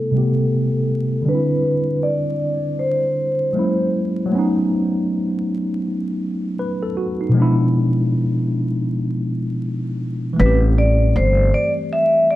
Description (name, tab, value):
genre	lo-fi hip hop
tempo	79 BPM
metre	4/4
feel	swing 62% on 16ths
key	A minor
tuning	A4 = 440 Hz
part	vibraphone with medium mallets	melody	0.0-3.9, 10.4-12.4 s	A4 to E5	-20 LUFS	equal	low-pass filter, plate reverb, analog delay
part	tine electric piano	accompaniment	0.0-12.4 s	B2 to B4	-19 LUFS	equal	medium stereo tremolo, cassette tape, low-pass filter
part	upright bass	bass	10.4-11.5 s	G1 to A1	-16 LUFS	equal	none
room	moderate small room reverb, RT60 0.5 s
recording	vinyl crackle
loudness	-17 LUFS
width	side -15 dB against mid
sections	0.0-10.4 A section; 10.4-12.4 B section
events	filter sweep 0.0-10.4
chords	0.0 Am9; 1.3 Cmaj9; 3.5 F#7; 4.3 B9; 7.3 E7b9/B; 10.4 Am7